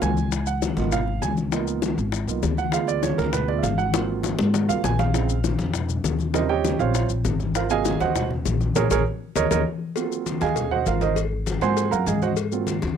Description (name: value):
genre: Afro-Cuban jazz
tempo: 199 BPM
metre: 4/4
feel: straight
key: Ab mixolydian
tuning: A4 = 440 Hz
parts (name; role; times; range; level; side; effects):
- warm grand piano; accompaniment; 0.0-12.7 s; C3 to C6; -24 LUFS; right 12 dB; none
- upright bass; bass; 0.0-13.0 s; Ab1 to Ab2; -25 LUFS; left 1 dB; none
- bongos and cowbell; percussion; 0.0-13.0 s; none; -30 LUFS; left 11 dB; none
- congas; percussion; 0.0-13.0 s; none; -28 LUFS; left 5 dB; none
- maracas; percussion; 0.0-13.0 s; none; -35 LUFS; left 28 dB; none
room: little or no reverb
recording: dry, close 1970s-style studio recording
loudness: -21 LUFS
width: side -8 dB against mid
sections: 0.0-10.0 A section; 10.0-13.0 A section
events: grand piano solo 0.0-13.0; drum fill 3.9-5.1, 9.4-10.0; band accent 8.8-10.0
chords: 0.3 Db13; 2.7 Ddim7; 3.9 Ab13; 5.1 Bbm7; 6.3 Eb13; 7.5 Ab13; 8.8 Bbm7; 9.4 Eb5; 10.0 Ab13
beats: 0.02 | 0.32 0.62 0.92 1.22 | 1.52 1.83 2.13 2.43 | 2.73 3.03 3.33 3.63 | 3.93 4.24 4.54 4.84 | 5.14 5.44 5.74 6.04 | 6.34 6.65 6.95 7.25 | 7.55 7.85 8.15 8.45 | 8.76 9.06 9.36 9.66 | 9.96 10.26 10.56 10.87 | 11.17 11.47 11.77 12.07 | 12.38 12.68